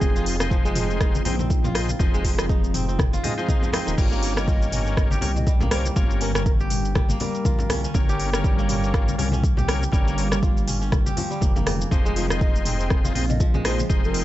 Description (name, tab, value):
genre	afro house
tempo	121 BPM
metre	4/4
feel	swing 57% on 16ths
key	unclear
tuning	A4 = 440 Hz
part	breathy mellow concert flute	melody	0.0-0.5, 4.4-7.9, 12.3-14.2 s	Ab4 to Eb5	-34 LUFS	right 1 dB	tape echo
part	ethereal airy pad	sustained chords	0.0-14.2 s	D3 to G5	-31 LUFS	equal	ensemble chorus, built-in reverb, sidechain pumping
part	kora	arpeggios	0.0-14.2 s	Db3 to G4	-31 LUFS	right 1 dB	sidechain pumping, tape echo
part	overdriven tonewheel organ	stabs	0.0-14.2 s	Bb3 to Eb5	-32 LUFS	left 4 dB	chorus vibrato, sidechain pumping, tape echo
part	dark detuned saw bass	bass	0.0-14.2 s	Eb1 to C2	-26 LUFS	equal	sidechain pumping
part	deep house drum kit	drums	0.0-14.2 s	crash cymbal, hi-hat, rim click, shaker, toms	-28 LUFS	equal	small room ambience
part	electronic kick drum	drums	0.0-14.0 s	none	-21 LUFS	equal	small room ambience
part	congas	percussion	0.0-14.0 s	none	-32 LUFS	left 2 dB	none
room	little or no reverb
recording	nothing above 7.9 kHz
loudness	-19 LUFS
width	side -14 dB against mid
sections	0.0-14.2 A section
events	none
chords	0.0 Fm7; 4.0 Gdim; 11.9 Fm7